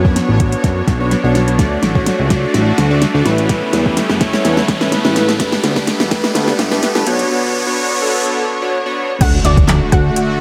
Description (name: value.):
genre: dance-pop.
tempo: 126 BPM.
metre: 4/4.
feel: straight.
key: D major.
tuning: A4 = 435 Hz.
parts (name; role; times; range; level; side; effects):
big bright polysynth; accompaniment; 0.0-10.4 s; A3 to D5; -20 LUFS; equal; chorus, sidechain pumping, tape echo.
supersaw pad; sustained chords; 0.0-10.4 s; C#3 to C#5; -25 LUFS; equal; sidechain pumping.
fat analog bass; bass; 0.0-10.1 s; E1 to F#2; -19 LUFS; equal; sidechain pumping.
smooth R&B drum kit; drums; 0.0-10.3 s; crash cymbal, handclaps, hi-hat, kick drum, snare drum; -18 LUFS; equal; overdrive.
riser and impact; sound effects; 0.0-10.4 s; none; -26 LUFS; equal; none.
analog pluck; melody; 9.2-10.3 s; D4 to F#5; -23 LUFS; equal; chorus, sidechain pumping, tape echo.
room: light reverb.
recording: echo-heavy mix, high-pass filter.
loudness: -15 LUFS.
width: mono.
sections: 0.0-9.2 A section; 9.2-10.4 B section.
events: build-up 0.0-9.2; drum fill 0.0-7.3; riser 0.0-9.2; filter sweep 0.0-9.2; drop 9.2-10.4; impact 9.2-10.4.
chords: 0.0 Bmadd9; 1.6 D; 3.3 Aadd9; 5.4 Gadd9; 7.1 Bmadd9; 9.2 D.